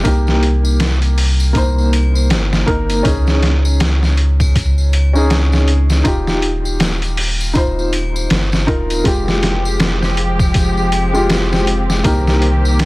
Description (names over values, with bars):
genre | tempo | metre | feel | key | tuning
trip hop | 80 BPM | 4/4 | swing 59% on 16ths | F minor | A4 = 440 Hz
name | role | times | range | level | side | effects
felt-muted upright piano | accompaniment | 0.0-12.9 s | Ab3 to C5 | -19 LUFS | left 1 dB | tremolo, tape echo
soft dub sub bass | bass | 0.0-12.9 s | Eb1 to Db2 | -15 LUFS | equal | none
trip hop sampler-style drum kit | drums | 0.0-12.9 s | hi-hat, kick drum, snare drum | -17 LUFS | equal | overdrive
tambourine and triangle | percussion | 0.0-12.9 s | none | -29 LUFS | left 3 dB | none
muted studio string section | sustained chords | 9.1-12.9 s | Eb3 to G4 | -20 LUFS | equal | none
room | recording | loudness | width
small room ambience | dense, heavily limited modern master, vinyl crackle | -12 LUFS | side -21 dB against mid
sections
0.0-12.9 A section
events
none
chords
0.1 Cm7; 3.1 Dbsus2; 6.1 Ebadd9; 9.1 Fmadd9; 12.1 Cm7